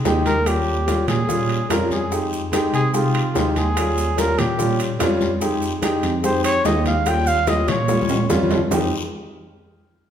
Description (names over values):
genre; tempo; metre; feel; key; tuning
Afro-Cuban jazz; 146 BPM; 4/4; straight; F minor; A4 = 438 Hz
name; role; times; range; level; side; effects
clear concert grand piano; accompaniment; 0.0-8.9 s; G3 to G4; -22 LUFS; equal; none
tine electric piano; bass; 0.0-8.9 s; Eb2 to C3; -23 LUFS; right 1 dB; medium stereo tremolo
bongos; percussion; 0.1-8.8 s; none; -31 LUFS; left 5 dB; none
congas; percussion; 0.1-8.8 s; none; -29 LUFS; left 3 dB; none
guiro; percussion; 0.1-8.8 s; none; -35 LUFS; left 5 dB; none
maracas; percussion; 0.1-8.8 s; none; -35 LUFS; right 4 dB; none
timbales; percussion; 0.1-8.8 s; none; -28 LUFS; right 3 dB; none
breathy trumpet; melody; 0.3-8.3 s; F4 to G5; -23 LUFS; right 1 dB; none
room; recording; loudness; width
wet recital hall reverb, RT60 1.4 s; recorded in a church or concert hall; -17 LUFS; side -9 dB against mid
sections
0.0-8.7 A section; 8.7-10.1 B section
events
trumpet solo 0.0-8.7; drum fill 7.9-8.7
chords
0.5 Eb7; 2.1 Fm7; 3.8 Eb7; 5.4 Fm7; 7.1 Eb7; 8.7 Fm7